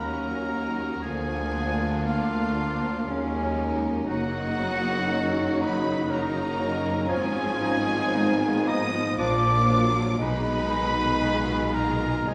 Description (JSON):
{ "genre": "classical, slow romantic movement for symphony orchestra", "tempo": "59 BPM", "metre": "3/4", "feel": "rubato", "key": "Eb minor from 4.1 s", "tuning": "A4 = 440 Hz", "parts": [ { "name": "rich studio violin section", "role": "melody", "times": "0.0-12.3 s", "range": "E#5 to Eb6", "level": "-37 LUFS", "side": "equal", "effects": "none" }, { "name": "bright oboe", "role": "second line", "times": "0.0-12.3 s", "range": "E#4 to Eb5", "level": "-35 LUFS", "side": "equal", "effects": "none" }, { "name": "clear clarinet", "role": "second line", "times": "0.0-12.3 s", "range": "C#4 to Eb4", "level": "-39 LUFS", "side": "equal", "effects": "none" }, { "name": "rich symphonic violin section", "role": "second line", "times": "0.0-12.3 s", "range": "Bb3 to Cb5", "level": "-39 LUFS", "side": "equal", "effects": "none" }, { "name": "silver concert flute", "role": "second line", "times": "0.0-12.3 s", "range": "E#5 to Eb6", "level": "-35 LUFS", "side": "equal", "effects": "none" }, { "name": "mellow bassoon", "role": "accompaniment", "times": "0.0-12.3 s", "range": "F3 to A#3", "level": "-38 LUFS", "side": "equal", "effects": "none" }, { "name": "warm symphonic viola section", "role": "accompaniment", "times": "0.0-12.3 s", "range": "Eb3 to Eb4", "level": "-35 LUFS", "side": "equal", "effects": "none" }, { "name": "mellow French horn section", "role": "sustained chords", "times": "0.0-12.3 s", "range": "Ab3 to Eb4", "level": "-34 LUFS", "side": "equal", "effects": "none" }, { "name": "warm trombone section", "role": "sustained chords", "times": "0.0-12.3 s", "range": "Ab2 to F#3", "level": "-37 LUFS", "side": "equal", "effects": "none" }, { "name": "mellow tuba", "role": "bass", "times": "0.0-12.3 s", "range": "Gb1 to D#2", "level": "-35 LUFS", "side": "equal", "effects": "none" }, { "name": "rich symphonic cello section", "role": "bass", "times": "0.0-12.3 s", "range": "D2 to Cb3", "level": "-35 LUFS", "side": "equal", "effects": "none" }, { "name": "rich symphonic double bass section", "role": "bass", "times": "0.0-12.3 s", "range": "Gb1 to D#2", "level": "-37 LUFS", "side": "equal", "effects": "none" } ], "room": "wet scoring stage reverb, RT60 1.5 s", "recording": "small room ambience", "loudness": "-25 LUFS", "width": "mono", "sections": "0.0-12.3 A section", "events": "none", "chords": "0.0 D#m7; 1.0 A#7/D; 3.1 D#m7; 4.1 Ebm/Gb; 7.1 Fm7b5/Ab; 9.2 Bb; 10.2 Abm/Cb", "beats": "0.00 | 1.04 2.06 3.07 | 4.08 5.11 6.10 | 7.10 8.15 9.19 | 10.21 11.22 12.29" }